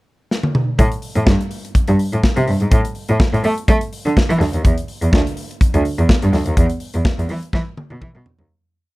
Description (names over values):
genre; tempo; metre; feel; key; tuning
disco; 125 BPM; 4/4; straight; A minor; A4 = 439 Hz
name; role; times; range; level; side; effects
modern studio drum kit; drums; 0.3-8.5 s; hi-hat, kick drum, snare drum, toms; -17 LUFS; equal; none
rich cello; bass; 0.8-8.5 s; D2 to A3; -17 LUFS; equal; none
room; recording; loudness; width
little or no reverb; dark, warm production; -15 LUFS; side -20 dB against mid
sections
0.0-0.8 pickup bar; 0.8-8.5 groove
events
drum fill 0.3-0.8, 7.5-8.5; fade-out 6.6-8.5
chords
none